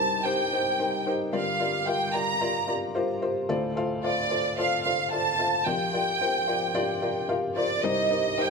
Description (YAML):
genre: pop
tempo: 111 BPM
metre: 4/4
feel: swing 56% on 16ths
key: G minor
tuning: A4 = 441 Hz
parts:
  - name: warm studio violin section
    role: melody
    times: 0.0-8.5 s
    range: D5 to Bb5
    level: -26 LUFS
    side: right 2 dB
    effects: none
  - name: felt-muted upright piano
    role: accompaniment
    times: 0.0-8.5 s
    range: Bb1 to F5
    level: -27 LUFS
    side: left 2 dB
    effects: none
room: wet large studio reverb, RT60 0.9 s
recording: none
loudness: -24 LUFS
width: side -4 dB against mid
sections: 0.0-7.8 A section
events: none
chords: 0.0 Cm7; 1.3 Gm7; 3.5 Dm7; 5.7 Bb6; 7.8 Cm7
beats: 0.25 0.80 | 1.34 1.88 2.42 2.96 | 3.50 4.04 4.59 5.13 | 5.67 6.21 6.75 7.29 | 7.83 8.38